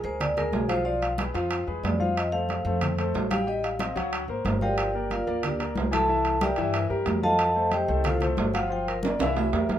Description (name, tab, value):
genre	Afro-Cuban jazz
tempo	184 BPM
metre	4/4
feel	straight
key	unclear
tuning	A4 = 441 Hz
part	vibraphone with medium mallets	melody	0.0-9.8 s	D4 to A5	-27 LUFS	right 1 dB	none
part	warm concert grand piano	accompaniment	0.0-9.8 s	E3 to G5	-30 LUFS	left 3 dB	none
part	upright bass	bass	0.0-9.8 s	G1 to G2	-31 LUFS	equal	none
part	congas	percussion	0.0-9.8 s	none	-33 LUFS	left 1 dB	none
part	timbales	percussion	0.2-9.8 s	none	-30 LUFS	right 4 dB	none
room	light reverb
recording	minimal, uncompressed stereo recording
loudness	-23 LUFS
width	side -11 dB against mid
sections	0.0-9.8 A section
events	vibraphone solo 0.0-9.8; drum fill 9.0-9.8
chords	0.0 Bb7; 0.9 E7b9 (rootless); 2.2 Fadd9; 3.5 Am7b5; 4.1 D7alt; 4.8 Gm7; 6.1 C9; 7.4 F9; 8.7 Gm7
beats	0.20 0.53 | 0.86 1.19 1.51 1.84 | 2.17 2.49 2.82 3.15 | 3.47 3.80 4.12 4.45 | 4.78 5.11 5.43 5.76 | 6.08 6.41 6.74 7.07 | 7.39 7.72 8.05 8.38 | 8.70 9.03 9.36 9.69